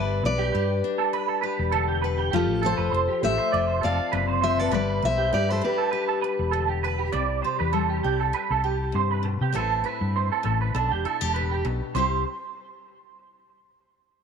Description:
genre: highlife guitar band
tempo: 100 BPM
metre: 4/4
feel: swing 54% on 16ths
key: C major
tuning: A4 = 440 Hz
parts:
  - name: picked steel-string acoustic guitar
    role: melody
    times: 0.0-6.8 s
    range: F4 to F5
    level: -26 LUFS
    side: left 2 dB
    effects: none
  - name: picked steel-string acoustic guitar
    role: accompaniment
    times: 0.0-12.2 s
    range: A2 to D5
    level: -31 LUFS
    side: left 15 dB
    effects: none
  - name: clean electric guitar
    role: arpeggios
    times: 0.0-12.2 s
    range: G4 to D5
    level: -27 LUFS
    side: right 10 dB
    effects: ensemble chorus, tape echo
  - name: hollow-body short-scale fingered electric bass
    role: bass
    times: 0.0-12.2 s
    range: E1 to C3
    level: -27 LUFS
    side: left 1 dB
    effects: none
room: light reverb, studio reverb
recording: 1960s-style stereo with parts hard left and right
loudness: -22 LUFS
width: side -6 dB against mid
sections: 0.0-7.1 A section; 7.1-12.0 B section; 12.0-14.2 C section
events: none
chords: 0.0 G; 2.3 F; 4.7 G; 7.1 C; 9.5 Amadd9; 10.7 G; 12.0 C5

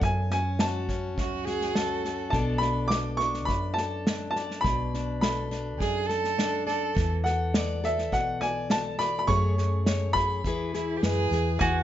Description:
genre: acoustic folk duo or small band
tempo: 104 BPM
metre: 4/4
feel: straight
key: B dorian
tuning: A4 = 440 Hz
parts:
  - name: clear upright piano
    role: melody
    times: 0.0-11.8 s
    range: E5 to D6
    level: -29 LUFS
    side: equal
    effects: none
  - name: fingerpicked plugged-in steel-string acoustic guitar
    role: accompaniment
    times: 0.0-11.8 s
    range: F#2 to D5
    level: -32 LUFS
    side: left 4 dB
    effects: none
  - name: hollow-body short-scale fingered electric bass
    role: bass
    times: 0.0-11.8 s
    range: B1 to F#2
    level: -30 LUFS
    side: equal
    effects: none
  - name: unplugged drum kit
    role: drums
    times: 0.0-11.7 s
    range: kick drum, snare drum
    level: -30 LUFS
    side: equal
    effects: none
  - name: warm cello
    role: second line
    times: 1.2-2.2, 5.8-7.1, 10.7-11.6 s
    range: E4 to A4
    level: -30 LUFS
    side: right 5 dB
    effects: none
  - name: mandolin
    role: arpeggios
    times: 11.6-11.8 s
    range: F#4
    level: -25 LUFS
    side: right 2 dB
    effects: none
room: light reverb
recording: nothing above 7.6 kHz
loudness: -25 LUFS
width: side -12 dB against mid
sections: 0.0-11.6 A section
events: none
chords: 0.0 F#m; 2.3 Bm7; 7.0 E7sus4; 9.3 F#madd9; 10.4 Eadd9

